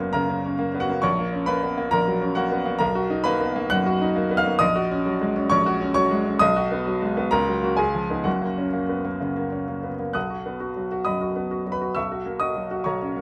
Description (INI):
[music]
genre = classical, virtuoso piano study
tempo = 133 BPM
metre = 4/4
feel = rubato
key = F# major, B major from 10.2 s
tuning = A4 = 443 Hz
[part]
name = clear baby grand piano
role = solo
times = 0.0-13.2 s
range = F#1 to F#6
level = -24 LUFS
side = equal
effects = none
[sound]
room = light reverb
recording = none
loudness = -24 LUFS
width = mono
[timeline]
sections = 0.0-10.2 A section; 10.2-13.2 B section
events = none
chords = 0.0 F#; 1.0 F#/A#; 2.8 Bmaj7; 4.6 F#/A#; 6.4 B; 7.3 F#/C#; 7.8 C#9; 8.3 F#; 10.2 B; 12.0 F#7/B